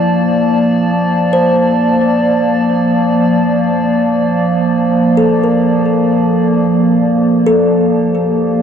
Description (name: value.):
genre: ambient.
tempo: free time.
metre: none.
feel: none.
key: G minor.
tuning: A4 = 439 Hz.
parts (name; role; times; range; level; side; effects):
warbly tape-like pad; sustained chords; 0.0-8.6 s; F3 to A5; -11 LUFS; equal; chorus, built-in reverb.
kalimba; arpeggios; 0.0-8.6 s; E4 to C5; -18 LUFS; left 1 dB; tape echo.
room: wet huge ambient reverb, RT60 8.7 s.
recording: dark, warm production.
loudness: -10 LUFS.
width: side -8 dB against mid.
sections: 0.0-6.7 A section; 6.7-8.6 A section.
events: none.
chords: 0.0 Gm7 (rootless); 6.7 Gm7.